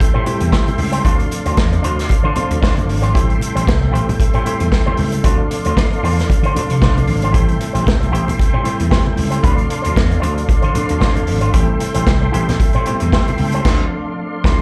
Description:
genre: disco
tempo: 114 BPM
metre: 4/4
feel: swing 56% on 16ths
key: A minor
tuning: A4 = 444 Hz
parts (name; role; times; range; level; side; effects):
- electric guitar with an envelope filter; accompaniment; 0.0-14.6 s; D4 to C5; -26 LUFS; equal; slapback echo
- mellow tine electric piano; accompaniment; 0.0-14.6 s; E3 to A5; -26 LUFS; equal; slapback echo
- tonewheel organ; sustained chords; 0.0-14.6 s; A4 to C6; -28 LUFS; equal; overdrive, chorus vibrato, slow rotary speaker
- vintage slap bass; bass; 0.0-14.6 s; G#1 to D3; -21 LUFS; equal; none
- vintage drum kit; drums; 0.0-14.6 s; crash cymbal, hi-hat, kick drum, snare drum; -19 LUFS; equal; none
- congas; percussion; 0.0-13.4 s; none; -28 LUFS; equal; none
room: small room reverb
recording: live gig heard through the venue's PA, club reverb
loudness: -16 LUFS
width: mono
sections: 0.0-14.6 A section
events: band accent 13.6-14.6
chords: 0.0 Am7; 1.0 Dm7; 3.1 Am7; 5.2 Dm7; 7.3 Am7; 9.4 Dm7; 11.5 Am7; 13.6 Dm7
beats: 0.00 0.52 | 1.05 1.57 2.09 2.62 | 3.14 3.66 4.19 4.71 | 5.24 5.76 6.28 6.81 | 7.33 7.86 8.38 8.91 | 9.44 9.96 10.49 11.01 | 11.54 12.07 12.59 13.12 | 13.65 14.18

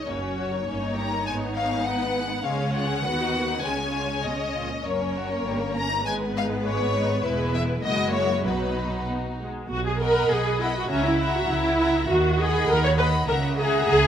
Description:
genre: quick classical-period movement for string orchestra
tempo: 100 BPM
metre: 2/4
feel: straight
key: B major from 7.2 s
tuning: A4 = 443 Hz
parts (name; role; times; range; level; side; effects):
- warm symphonic violin section; melody; 0.0-14.1 s; B4 to B5; -29 LUFS; left 4 dB; none
- warm symphonic viola section; accompaniment; 0.0-14.1 s; F#3 to C#5; -25 LUFS; right 1 dB; none
- warm symphonic violin section; second line; 0.1-14.1 s; G3 to F#5; -30 LUFS; left 2 dB; none
- rich chamber double bass section; bass; 0.1-14.1 s; E1 to D#2; -31 LUFS; right 2 dB; none
- rich symphonic cello section; bass; 0.1-14.1 s; E2 to D#3; -30 LUFS; right 3 dB; none
room: moderate concert hall reverb, RT60 1.9 s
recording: none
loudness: -22 LUFS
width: side -9 dB against mid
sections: 0.1-9.7 A section; 9.7-14.1 B section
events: none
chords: 0.1 F#; 0.7 D#7/G; 1.3 G#m; 2.5 C#; 3.0 B/D#; 3.6 C#; 4.9 F#; 5.5 D#7/G; 6.1 G#m; 7.2 E; 7.8 F#13; 8.5 B; 10.9 F#7/C#; 12.1 B/D#; 13.3 F#7/C#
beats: | 0.07 0.67 | 1.27 1.86 | 2.45 3.04 | 3.64 4.25 | 4.86 5.46 | 6.06 6.65 | 7.24 7.84 | 8.45 9.07 | 9.68 10.29 | 10.89 11.48 | 12.08 12.68 | 13.28 13.87

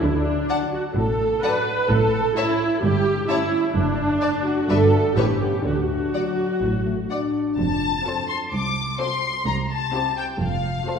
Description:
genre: cinematic, playful, whimsical film cue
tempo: 128 BPM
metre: 4/4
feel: straight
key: D major, F major from 7.6 s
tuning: A4 = 442 Hz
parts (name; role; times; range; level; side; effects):
- warm studio viola section; accompaniment; 0.0-11.0 s; A3 to B4; -23 LUFS; right 1 dB; none
- rich studio cello section; bass; 0.0-10.8 s; C2 to D3; -27 LUFS; right 2 dB; none
- rich studio double bass section; bass; 0.0-10.8 s; F1 to D2; -27 LUFS; right 2 dB; none
- rich studio violin section; melody; 0.5-11.0 s; E5 to D6; -28 LUFS; left 6 dB; none
- clear studio violin section; second line; 0.5-11.0 s; G4 to F#5; -31 LUFS; left 3 dB; none
- warm French horn section; sustained chords; 0.5-7.6 s; F#3 to D4; -28 LUFS; left 3 dB; none
room: wet concert hall reverb, RT60 2.1 s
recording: heard from further back in the room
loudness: -19 LUFS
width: side -6 dB against mid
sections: 0.0-7.6 A section; 7.6-11.0 B section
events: none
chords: 0.0 D; 1.9 A; 2.8 A7/G; 3.8 D/F#; 4.7 Em7/G (rootless); 5.2 A9; 5.7 D; 7.6 F; 9.5 C; 10.4 F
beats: | 0.01 0.49 0.95 1.42 | 1.89 2.36 2.83 3.29 | 3.75 4.22 4.69 5.17 | 5.65 6.14 6.62 7.10 | 7.58 8.06 8.53 9.00 | 9.47 9.94 10.41 10.87

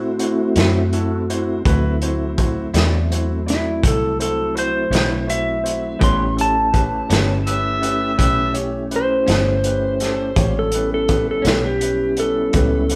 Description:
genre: slow blues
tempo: 55 BPM (dotted quarters)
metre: 12/8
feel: straight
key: A mixolydian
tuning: A4 = 440 Hz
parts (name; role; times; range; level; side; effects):
- clear upright piano; accompaniment; 0.0-13.0 s; C#4 to D5; -30 LUFS; equal; none
- mellow tonewheel organ; sustained chords; 0.0-13.0 s; F#3 to G4; -26 LUFS; equal; slow rotary speaker, chorus vibrato
- vintage muted fingered electric bass; bass; 0.0-13.0 s; G1 to A2; -25 LUFS; equal; none
- crunchy breakbeat drum kit; drums; 0.2-13.0 s; hi-hat, kick drum, snare drum; -23 LUFS; equal; none
- electric guitar through a small old amp; accompaniment; 0.6-11.7 s; A2 to E4; -29 LUFS; equal; harmonic tremolo
- clean lap steel guitar; melody; 3.5-13.0 s; E4 to C6; -23 LUFS; equal; none
- mellow harmonica; second line; 7.5-8.5 s; E5; -23 LUFS; equal; overdrive
room: moderate large studio reverb, RT60 0.9 s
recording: band playing live in one room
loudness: -19 LUFS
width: mono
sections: 0.0-13.0 A section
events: none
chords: 0.0 D9; 6.0 A9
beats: 0.56 | 1.66 2.75 3.83 4.92 | 6.01 7.10 8.19 9.28 | 10.36 11.45 12.54

